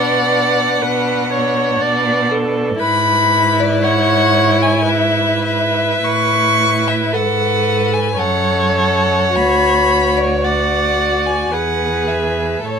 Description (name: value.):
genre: classical, slow romantic movement for string quartet.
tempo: 55 BPM.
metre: 3/4.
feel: uneven beats, rubato.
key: unclear.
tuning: A4 = 439 Hz.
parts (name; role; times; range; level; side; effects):
rich violin; melody; 0.0-12.8 s; C#5 to C#6; -17 LUFS; left 4 dB; none.
rich violin; second line; 0.0-12.8 s; D4 to B4; -20 LUFS; left 2 dB; none.
rich viola; accompaniment; 0.0-12.8 s; A4 to D5; -18 LUFS; right 2 dB; none.
clear cello; bass; 0.0-12.8 s; D2 to B2; -20 LUFS; right 4 dB; none.
room: light reverb.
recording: minimal, uncompressed stereo recording.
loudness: -13 LUFS.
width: side -6 dB against mid.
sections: 0.0-12.8 A section.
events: none.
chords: 0.0 Bm; 2.8 E/G#; 6.0 A5; 8.2 F#m; 9.4 Dmaj7; 11.5 E.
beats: 0.83 1.82 | 2.81 3.84 4.88 | 6.04 7.14 8.19 | 9.35 10.45 11.52 | 12.66.